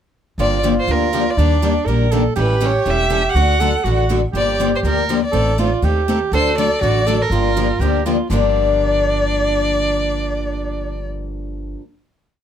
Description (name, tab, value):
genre	acoustic string swing (jazz manouche)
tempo	243 BPM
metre	4/4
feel	swing 56% on 8ths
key	G minor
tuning	A4 = 440 Hz
part	warm violin	melody	0.4-11.1 s	Bb4 to F#5	-21 LUFS	equal	none
part	warm soprano saxophone	second line	0.4-11.0 s	D4 to Bb4	-22 LUFS	right 6 dB	none
part	picked steel-string acoustic guitar	accompaniment	0.4-11.8 s	G2 to A4	-22 LUFS	left 8 dB	none
part	picked steel-string acoustic guitar	accompaniment	0.4-11.8 s	G2 to A4	-26 LUFS	right 6 dB	none
part	upright bass	bass	0.4-11.7 s	E1 to Eb2	-20 LUFS	equal	none
room	light reverb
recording	none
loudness	-15 LUFS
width	side -9 dB against mid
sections	0.4-8.3 A section; 8.3-10.3 final chord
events	none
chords	0.4 Gm7; 1.4 Ebmaj7; 2.4 A7; 3.4 D; 4.3 Gm7; 5.3 Adim; 6.3 D; 7.3 Gm7